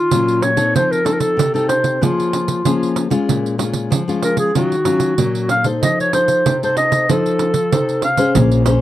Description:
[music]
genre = samba and choro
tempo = 95 BPM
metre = 4/4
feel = straight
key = unclear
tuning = A4 = 440 Hz
[part]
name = breathy clarinet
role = melody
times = 0.0-8.3 s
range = F4 to F5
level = -17 LUFS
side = equal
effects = none
[part]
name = nylon-string guitar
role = accompaniment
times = 0.0-8.8 s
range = Bb2 to C5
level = -19 LUFS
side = left 4 dB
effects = none
[part]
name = pandeiro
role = percussion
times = 0.1-8.8 s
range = none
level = -20 LUFS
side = right 5 dB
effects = none
[part]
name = upright bass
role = bass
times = 8.4-8.8 s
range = Bb1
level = -14 LUFS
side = equal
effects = none
[sound]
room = little or no reverb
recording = dry, close 1970s-style studio recording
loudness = -14 LUFS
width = side -13 dB against mid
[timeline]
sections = 0.0-8.4 A section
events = none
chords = 0.0 Ebm9; 0.8 F7; 2.0 Db6/F; 3.3 Bbm7; 4.6 Ebm9; 5.8 F7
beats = 0.12 | 0.75 1.39 2.02 2.66 | 3.29 3.93 4.56 5.19 | 5.83 6.46 7.09 7.73 | 8.36

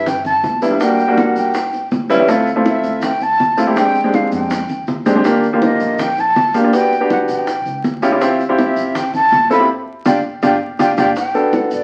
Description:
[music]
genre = Afro-Cuban jazz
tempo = 162 BPM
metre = 4/4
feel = straight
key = unclear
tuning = A4 = 440 Hz
[part]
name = breathy jazz flute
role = melody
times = 0.0-11.8 s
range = D5 to B5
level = -19 LUFS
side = equal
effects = none
[part]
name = warm baby grand piano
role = accompaniment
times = 0.0-11.8 s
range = D3 to A4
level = -17 LUFS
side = equal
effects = none
[part]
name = upright bass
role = bass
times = 0.0-11.8 s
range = G1 to G2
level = -37 LUFS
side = equal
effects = none
[part]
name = bongos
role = percussion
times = 0.1-11.8 s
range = none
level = -26 LUFS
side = equal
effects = none
[part]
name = congas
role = percussion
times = 0.1-11.8 s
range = none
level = -27 LUFS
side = equal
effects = none
[part]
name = maracas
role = percussion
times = 0.1-11.8 s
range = none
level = -40 LUFS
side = equal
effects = none
[sound]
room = wet large studio reverb, RT60 0.8 s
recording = very old 78 rpm record, vinyl crackle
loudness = -15 LUFS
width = mono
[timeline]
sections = 0.0-11.2 A section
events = drum fill 4.3-5.2; band accent 9.7-11.2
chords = 0.0 Cmaj9 (rootless); 0.8 Em7b5; 1.5 A7; 2.3 Dm9; 3.8 Bb13; 5.2 Ebmaj9; 6.7 Em7; 7.5 A7b13; 8.2 Dm11; 9.7 G5; 11.2 Gmaj9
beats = 0.06 0.43 | 0.81 1.18 1.54 1.92 | 2.29 2.66 3.03 3.40 | 3.77 4.14 4.51 4.88 | 5.25 5.62 5.99 6.36 | 6.73 7.10 7.47 7.84 | 8.21 8.58 8.95 9.32 | 9.69 10.06 10.43 10.80 | 11.17 11.54

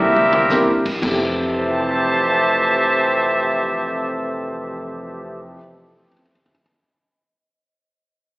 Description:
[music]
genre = jazz, big band swing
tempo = 114 BPM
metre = 4/4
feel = swing 67% on 8ths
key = F major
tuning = A4 = 440 Hz
[part]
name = mellow trumpet section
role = melody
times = 0.0-5.5 s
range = C4 to A5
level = -18 LUFS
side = equal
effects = plate reverb, slapback echo
[part]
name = warm trombone section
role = second line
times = 0.0-5.5 s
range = F2 to E4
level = -24 LUFS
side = equal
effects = plate reverb
[part]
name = vintage hollow-body jazz guitar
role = accompaniment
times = 0.0-5.6 s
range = C3 to G4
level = -29 LUFS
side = left 1 dB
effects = none
[part]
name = upright bass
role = bass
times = 0.0-5.5 s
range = F1 to E2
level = -34 LUFS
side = equal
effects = none
[part]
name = vintage drum kit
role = drums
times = 0.2-1.2 s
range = crash cymbal, hi-hat, kick drum, snare drum, toms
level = -28 LUFS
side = equal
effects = none
[part]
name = warm grand piano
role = accompaniment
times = 0.5-6.6 s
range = F2 to C7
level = -25 LUFS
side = equal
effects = plate reverb, slapback echo
[sound]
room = moderate club reverb, RT60 0.8 s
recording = live gig heard through the venue's PA, recital hall reverb, AM radio sound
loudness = -16 LUFS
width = side -21 dB against mid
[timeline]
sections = 0.0-1.0 A section; 1.0-5.2 B section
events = drum fill 0.0-0.5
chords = 0.0 C7; 1.0 Fmaj9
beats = 0.50 | 1.03 1.55 2.08 2.60 | 3.12 3.65 4.17 4.70

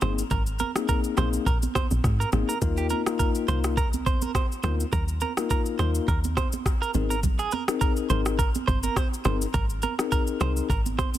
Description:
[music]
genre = afrobeats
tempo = 104 BPM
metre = 4/4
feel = swing 55% on 16ths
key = unclear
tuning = A4 = 441 Hz
[part]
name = mellow tine electric piano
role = accompaniment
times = 0.0-10.7 s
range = Bb3 to Bb4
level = -31 LUFS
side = left 8 dB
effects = none
[part]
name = direct-recorded clean electric guitar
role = riff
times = 0.0-11.1 s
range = G4 to C5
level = -31 LUFS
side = right 6 dB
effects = tremolo, ping-pong delay
[part]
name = deep log drum bass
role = bass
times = 0.0-11.0 s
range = G1 to Ab2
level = -27 LUFS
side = equal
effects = none
[part]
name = afro-pop drum kit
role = drums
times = 0.0-11.2 s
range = kick drum, rim click, shaker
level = -27 LUFS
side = equal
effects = none
[part]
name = congas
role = percussion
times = 0.0-11.2 s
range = none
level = -35 LUFS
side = right 9 dB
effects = none
[sound]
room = little or no reverb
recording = dense, heavily limited modern master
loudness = -23 LUFS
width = side -12 dB against mid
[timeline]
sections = 0.0-11.2 A section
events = none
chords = 0.0 Abadd9; 2.6 Ebsus2; 6.9 Abadd9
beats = | 0.31 0.89 1.47 2.04 | 2.62 3.20 3.77 4.35 | 4.93 5.50 6.08 6.66 | 7.23 7.81 8.39 8.96 | 9.54 10.12 10.70

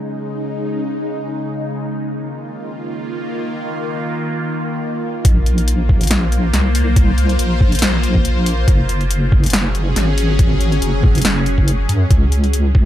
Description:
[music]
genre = deep dubstep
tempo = 140 BPM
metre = 4/4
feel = swing 54% on 16ths, half-time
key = Bb minor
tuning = A4 = 440 Hz
[part]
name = bowed-like drone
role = sustained chords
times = 0.0-12.9 s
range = Db3 to C5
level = -22 LUFS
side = left 1 dB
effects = built-in reverb, phaser
[part]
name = deep soft wobble bass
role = bass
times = 5.2-12.9 s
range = Gb1 to Gb2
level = -16 LUFS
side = equal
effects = chorus, tube saturation
[part]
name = deep house drum kit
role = drums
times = 5.2-12.6 s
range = hi-hat, snare drum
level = -20 LUFS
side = left 1 dB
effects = overdrive, low-pass filter on hats, low-pass filter on snare, low-pass filter on room
[part]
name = electronic kick drum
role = drums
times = 5.2-12.8 s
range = none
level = -13 LUFS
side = equal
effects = overdrive
[sound]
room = digital ambience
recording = none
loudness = -14 LUFS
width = side -12 dB against mid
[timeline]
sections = 0.0-5.2 A section; 5.2-12.9 B section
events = filter sweep on synth drone 0.0-5.2; drop 5.2-12.9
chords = 0.0 Db5; 1.8 Eb5; 5.2 Bb5; 8.7 Gb5; 12.1 Db5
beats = | 0.11 0.54 0.96 1.39 | 1.82 2.25 2.68 3.11 | 3.54 3.96 4.39 4.82 | 5.25 5.68 6.11 6.54 | 6.96 7.39 7.82 8.25 | 8.68 9.11 9.54 9.96 | 10.39 10.82 11.25 11.68 | 12.11 12.54

